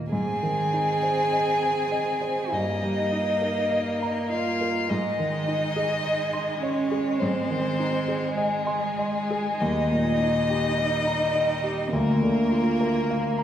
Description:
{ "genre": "classical, slow romantic movement for piano quartet", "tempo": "46-54 BPM", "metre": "4/4", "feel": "rubato", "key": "Ab major", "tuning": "A4 = 439 Hz", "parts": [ { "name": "rich cello", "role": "second line", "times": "0.0-13.4 s", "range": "Ab3 to Ab4", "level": "-28 LUFS", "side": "right 3 dB", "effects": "none" }, { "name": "warm grand piano", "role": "accompaniment", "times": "0.0-13.4 s", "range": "D2 to C6", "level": "-27 LUFS", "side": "equal", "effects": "none" }, { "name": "rich violin", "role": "melody", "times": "0.1-13.4 s", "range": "Ab4 to Ab5", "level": "-28 LUFS", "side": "left 3 dB", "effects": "none" }, { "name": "rich violin", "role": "second line", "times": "0.1-13.4 s", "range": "G3 to C4", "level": "-33 LUFS", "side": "left 1 dB", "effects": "none" } ], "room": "wet recital hall reverb, RT60 1.6 s", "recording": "heard from further back in the room", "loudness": "-22 LUFS", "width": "side -10 dB against mid", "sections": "0.1-13.4 A section", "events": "none", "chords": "0.1 Ab; 2.5 Eb/G; 4.9 Ab; 9.6 Eb; 11.9 Bb/D" }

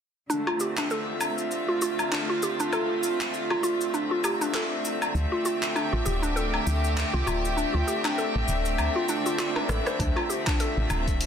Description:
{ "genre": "organic downtempo", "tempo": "99 BPM", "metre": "4/4", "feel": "swing 57% on 16ths", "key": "D minor", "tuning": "A4 = 440 Hz", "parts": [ { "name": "rich chamber string section", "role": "sustained chords", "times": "0.3-11.3 s", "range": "D3 to E5", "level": "-29 LUFS", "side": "equal", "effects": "sidechain pumping" }, { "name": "mallet-like synth pluck", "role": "arpeggios", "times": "0.3-10.7 s", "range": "D4 to C5", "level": "-29 LUFS", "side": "equal", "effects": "chorus, ping-pong delay" }, { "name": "deep house drum kit", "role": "drums", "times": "0.3-11.3 s", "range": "cabasa, handclaps, hi-hat, rim click, woodblock", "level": "-31 LUFS", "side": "left 1 dB", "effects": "overdrive" }, { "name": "woody FM bass", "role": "bass", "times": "5.1-11.3 s", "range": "D1 to D2", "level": "-27 LUFS", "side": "equal", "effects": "tube saturation, sidechain pumping" }, { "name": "swell", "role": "sound effects", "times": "9.1-10.0 s", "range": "none", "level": "-38 LUFS", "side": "right 2 dB", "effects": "none" }, { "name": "electronic kick drum", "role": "drums", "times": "10.0-11.2 s", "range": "none", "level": "-27 LUFS", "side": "equal", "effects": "overdrive" } ], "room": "moderate scoring stage reverb, RT60 2.0 s", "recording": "dense, heavily limited modern master", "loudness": "-24 LUFS", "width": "side -8 dB against mid", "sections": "0.3-10.0 A section; 10.0-11.3 B section", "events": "swell 9.1-10.0; drum fill 9.5-10.0", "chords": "0.3 Dm7" }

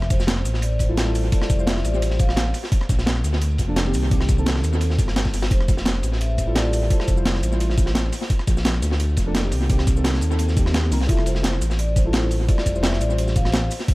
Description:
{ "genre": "liquid drum and bass", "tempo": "172 BPM", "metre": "4/4", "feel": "straight", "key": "F major", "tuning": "A4 = 443 Hz", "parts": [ { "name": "smooth synth bass", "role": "bass", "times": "0.0-13.7 s", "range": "F1 to Eb2", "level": "-22 LUFS", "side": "equal", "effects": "none" }, { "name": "breakbeat sampler-style drum kit", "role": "drums", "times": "0.0-13.9 s", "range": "hi-hat, rim click, shaker, snare drum", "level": "-26 LUFS", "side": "right 1 dB", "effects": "tape echo" }, { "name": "crunchy breakbeat drum kit", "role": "drums", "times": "0.0-13.9 s", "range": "ride cymbal, snare drum", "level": "-30 LUFS", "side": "equal", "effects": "high-pass filter on cymbals, high-pass filter on snare, high-pass filter on room, tape echo" }, { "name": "vibraphone with medium mallets", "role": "melody", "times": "0.1-2.5, 5.5-7.6, 11.1-13.7 s", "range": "C5 to F5", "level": "-31 LUFS", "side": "equal", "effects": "tape echo" }, { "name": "electronic kick drum", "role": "drums", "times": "0.1-13.9 s", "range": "none", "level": "-20 LUFS", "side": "equal", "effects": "overdrive" }, { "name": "deep mellow chord stab", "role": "accompaniment", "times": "0.9-13.7 s", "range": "Eb3 to C5", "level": "-28 LUFS", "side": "equal", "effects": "chorus, dub echo" } ], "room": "light reverb, small room ambience", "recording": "echo-heavy mix", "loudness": "-18 LUFS", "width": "side -20 dB against mid", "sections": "0.0-11.1 A section; 11.1-13.9 A section", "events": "drop 0.0-11.1, 11.1-13.9; kick drops out 10.7-11.1", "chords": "0.0 Fmaj9; 2.5 Bbmaj7; 3.9 Cm7; 5.5 Fmaj9; 8.1 Bbmaj7; 9.5 Cm7; 11.1 Fmaj9" }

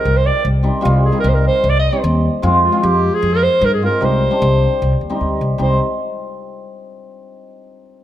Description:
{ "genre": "klezmer", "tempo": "151 BPM", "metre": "4/4", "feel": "straight", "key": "C minor", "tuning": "A4 = 443 Hz", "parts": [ { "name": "mellow clarinet", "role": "melody", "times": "0.0-5.8 s", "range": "F4 to Eb5", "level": "-17 LUFS", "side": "right 1 dB", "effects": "none" }, { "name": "cimbalom", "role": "accompaniment", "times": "0.0-5.8 s", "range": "Eb3 to F4", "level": "-20 LUFS", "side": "equal", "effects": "none" }, { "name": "upright bass", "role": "bass", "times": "0.1-5.8 s", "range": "C2 to G2", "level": "-16 LUFS", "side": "equal", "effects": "none" } ], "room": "moderate recital hall reverb, RT60 1.6 s", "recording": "none", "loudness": "-13 LUFS", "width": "side -12 dB against mid", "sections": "0.0-5.6 A section; 5.6-7.2 B section", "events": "none", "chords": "0.0 Cm; 2.4 Fm; 4.0 Cm" }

